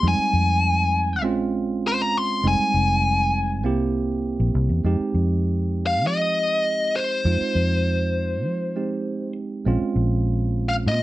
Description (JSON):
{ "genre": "straight-eighth soul blues", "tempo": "100 BPM", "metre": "4/4", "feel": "straight", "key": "F minor", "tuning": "A4 = 441 Hz", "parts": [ { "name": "biting lead guitar", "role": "melody", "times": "0.0-11.0 s", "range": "C5 to C6", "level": "-22 LUFS", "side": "left 2 dB", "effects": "overdrive" }, { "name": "tine electric piano", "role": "accompaniment", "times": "0.0-11.0 s", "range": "G3 to G4", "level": "-26 LUFS", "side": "right 4 dB", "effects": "none" }, { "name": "vintage muted fingered electric bass", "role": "bass", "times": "0.0-11.0 s", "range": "F1 to F3", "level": "-23 LUFS", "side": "equal", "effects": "none" } ], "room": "light reverb", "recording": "none", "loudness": "-20 LUFS", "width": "side -16 dB against mid", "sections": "0.0-4.8 A section; 4.8-11.0 B section", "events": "lead electric guitar solo 0.0-4.8", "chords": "0.0 Fm9; 1.2 Bbm9; 2.4 Fm9; 3.6 C7; 4.8 Fm9; 9.7 Bbm9" }